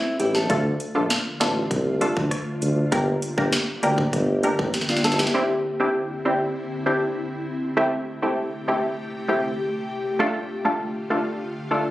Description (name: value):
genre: dancehall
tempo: 99 BPM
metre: 4/4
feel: straight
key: D minor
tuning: A4 = 440 Hz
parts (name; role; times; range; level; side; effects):
- nylon-string guitar; arpeggios; 0.0-0.6, 4.9-5.5 s; C4 to A4; -26 LUFS; left 1 dB; none
- mellow tuba; bass; 0.2-5.3 s; G1 to D2; -23 LUFS; equal; none
- island pop drum kit; drums; 0.2-5.4 s; hi-hat, kick drum, rim click, snare drum; -25 LUFS; equal; none
- punchy chord stab; accompaniment; 0.5-11.9 s; A3 to Bb4; -23 LUFS; equal; chorus
- ethereal airy pad; sustained chords; 0.9-11.9 s; C3 to G4; -30 LUFS; left 1 dB; ensemble chorus, built-in reverb, sidechain pumping
room: light reverb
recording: recorded on a phone in the room, studio reverb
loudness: -21 LUFS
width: side -15 dB against mid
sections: 0.0-5.3 A section; 5.3-11.9 B section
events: drum fill 4.7-5.3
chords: 0.5 Dm; 2.9 Gm; 5.3 Cadd9; 7.8 Am7; 10.2 Dm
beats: | 0.50 1.10 1.71 2.32 | 2.92 3.53 4.13 4.74 | 5.35 5.95 6.56 7.17 | 7.77 8.38 8.98 9.59 | 10.20 10.80 11.41